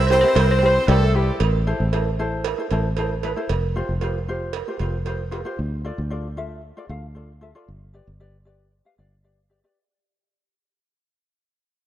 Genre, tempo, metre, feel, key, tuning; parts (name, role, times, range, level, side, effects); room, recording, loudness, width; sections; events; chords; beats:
calypso; 115 BPM; 4/4; straight; A4 = 440 Hz
steel pan; melody; 0.0-0.7 s; C5; -22 LUFS; equal; tape echo
clear horn section; second line; 0.0-1.4 s; G3 to C5; -24 LUFS; right 2 dB
fingered electric bass; bass; 0.0-9.6 s; F1 to D2; -22 LUFS; equal
ukulele; accompaniment; 0.1-9.8 s; E4 to F5; -29 LUFS; left 2 dB
cowbell; percussion; 0.1-5.4 s; -28 LUFS; right 10 dB
moderate lush hall reverb, RT60 3.0 s; -19 LUFS; side -12 dB against mid
0.0-1.4 A section; 1.4-9.8 B section
fade-out 1.4-9.8
0.0 C; 1.4 Am; 3.5 Fsus2; 5.6 Dm; 7.7 G
0.37 0.89 | 1.41 1.93 2.45 2.97 | 3.49 4.01 4.54 5.06 | 5.58 6.11 6.63 7.15 | 7.67 8.20 8.72 9.25